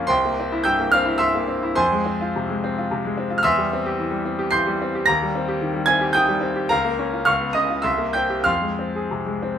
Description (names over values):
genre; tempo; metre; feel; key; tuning
classical, romantic character piece for solo piano; 91-114 BPM; 3/4; rubato; unclear; A4 = 440 Hz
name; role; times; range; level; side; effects
bright grand piano; solo; 0.0-9.6 s; Bb1 to C7; -19 LUFS; equal; none
room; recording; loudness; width
light reverb; none; -19 LUFS; side -8 dB against mid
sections
0.0-9.6 A section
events
none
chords
0.1 C7; 1.8 Fm; 3.4 C/E; 5.1 Cm/Eb; 6.7 Bbm/Db; 7.3 Db7; 7.8 C7; 8.5 Fm